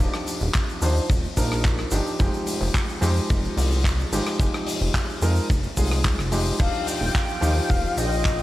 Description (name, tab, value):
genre	nu-disco, nu disco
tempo	109 BPM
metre	4/4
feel	straight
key	Eb major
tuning	A4 = 439 Hz
part	warm concert grand piano	accompaniment	0.0-8.4 s	F3 to C5	-28 LUFS	equal	analog delay
part	chorused synth bass	bass	0.0-8.4 s	Eb1 to F2	-23 LUFS	equal	tube saturation
part	egg shaker	percussion	0.0-8.4 s	none	-37 LUFS	equal	none
part	big rock drum kit	drums	0.1-8.4 s	crash cymbal, handclaps, hi-hat, rim click	-30 LUFS	left 2 dB	none
part	kick drum	drums	0.6-8.4 s	none	-25 LUFS	equal	none
part	mellow concert flute	melody	6.6-8.4 s	Eb5 to G5	-28 LUFS	left 3 dB	analog delay
part	lush unison pad	sustained chords	6.6-8.4 s	F4 to G5	-32 LUFS	left 1 dB	chorus, sidechain pumping
room	studio reverb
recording	none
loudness	-20 LUFS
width	side -16 dB against mid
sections	0.0-8.4 A section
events	none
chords	0.0 Ebmaj9; 2.2 Fm9; 6.6 Ebmaj9